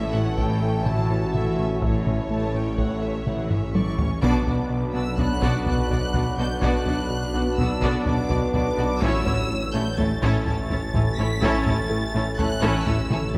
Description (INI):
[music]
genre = cinematic, hybrid orchestral and electronic film score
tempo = 125 BPM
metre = 5/4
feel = straight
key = B minor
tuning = A4 = 439 Hz
[part]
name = rich symphonic violin section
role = melody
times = 0.0-13.4 s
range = C#5 to B6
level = -36 LUFS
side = equal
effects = none
[part]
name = rich studio violin section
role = second line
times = 0.0-13.4 s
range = F#4 to A5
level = -37 LUFS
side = equal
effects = none
[part]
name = warm symphonic viola section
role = accompaniment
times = 0.0-13.4 s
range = A3 to E4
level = -33 LUFS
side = equal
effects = none
[part]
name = analog drone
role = sustained chords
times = 0.0-13.4 s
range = E3 to C#5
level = -34 LUFS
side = equal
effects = chorus
[part]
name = warm French horn section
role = sustained chords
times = 0.0-13.4 s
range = A3 to F#4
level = -35 LUFS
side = equal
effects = none
[part]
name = smooth synth bass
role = riff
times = 0.0-13.4 s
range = A2 to B3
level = -31 LUFS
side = equal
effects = none
[part]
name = rich symphonic double bass section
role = bass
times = 0.0-13.4 s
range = A1 to B1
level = -33 LUFS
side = equal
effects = none
[part]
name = swelling detuned saw bass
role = bass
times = 0.0-13.4 s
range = A1 to B1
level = -33 LUFS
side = equal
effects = none
[part]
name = warm symphonic cello section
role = bass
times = 0.0-13.4 s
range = A2 to B2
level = -34 LUFS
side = equal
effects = none
[part]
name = solo taiko drums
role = drums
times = 0.4-13.4 s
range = none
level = -30 LUFS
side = equal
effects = none
[part]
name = felt-muted upright piano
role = texture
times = 1.8-13.4 s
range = B3 to F#5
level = -40 LUFS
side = equal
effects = none
[sound]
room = wet concert hall reverb, RT60 2.0 s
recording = none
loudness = -23 LUFS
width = mono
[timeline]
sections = 0.0-4.2 A section; 4.2-13.4 B section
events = drum fill 3.5-4.2, 13.1; band accent 4.2-4.7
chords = 0.0 A; 4.2 Bm; 9.0 A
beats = 0.38 0.86 1.34 | 1.82 2.30 2.78 3.26 3.74 | 4.22 4.70 5.18 5.66 6.14 | 6.62 7.10 7.58 8.06 8.54 | 9.02 9.50 9.98 10.46 10.94 | 11.42 11.90 12.38 12.86 13.34